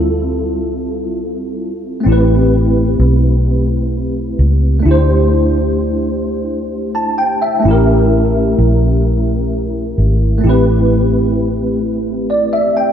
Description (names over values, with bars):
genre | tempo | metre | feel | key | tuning
slow six-eight R&B | 43 BPM (dotted quarters) | 6/8 | straight | A minor | A4 = 441 Hz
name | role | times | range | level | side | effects
tine electric piano | accompaniment | 0.0-12.9 s | G3 to A5 | -15 LUFS | equal | ensemble chorus
vintage muted fingered electric bass | bass | 0.0-12.9 s | G#1 to D2 | -14 LUFS | equal | none
room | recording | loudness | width
moderate church reverb, RT60 3.3 s | dreamy mix soaked in reverb | -12 LUFS | side -8 dB against mid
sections
0.0-12.9 A section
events
none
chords
0.0 Dm11; 2.1 Am9; 4.8 D9sus4; 7.6 A7b9; 10.4 Am9